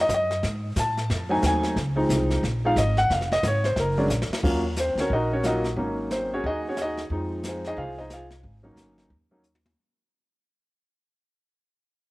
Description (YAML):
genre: jazz piano trio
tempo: 180 BPM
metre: 4/4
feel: swing 62% on 8ths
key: unclear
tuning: A4 = 441 Hz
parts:
  - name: warm grand piano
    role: melody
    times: 0.0-9.4 s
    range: F3 to A5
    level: -24 LUFS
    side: equal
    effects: none
  - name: upright bass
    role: bass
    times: 0.0-9.7 s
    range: F1 to A2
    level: -28 LUFS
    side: equal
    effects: none
  - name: jazz brush drum kit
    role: drums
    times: 0.1-10.0 s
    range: brushed snare drum, crash cymbal, hi-hat, kick drum, snare drum, toms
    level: -31 LUFS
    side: equal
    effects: cassette tape
room: light reverb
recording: home recording on cassette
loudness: -22 LUFS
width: side -20 dB against mid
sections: 0.0-4.4 A section; 4.4-9.8 B section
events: drum fill 4.1-4.4, 9.4-9.8; fade-out 4.4-9.8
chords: 0.4 Ab7b9; 1.8 Dbmaj7; 3.1 Fm; 3.8 Bb(#5, no3); 4.4 Ebm9; 5.8 Ab7sus4; 7.1 Fm7; 8.4 Ab7sus4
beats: 0.09 | 0.42 0.76 1.09 1.42 | 1.76 2.09 2.42 2.76 | 3.09 3.43 3.76 4.09 | 4.43 4.76 5.09 5.43 | 5.76 6.09 6.43 6.76 | 7.09 7.43 7.76 8.10 | 8.43 8.76 9.10 9.43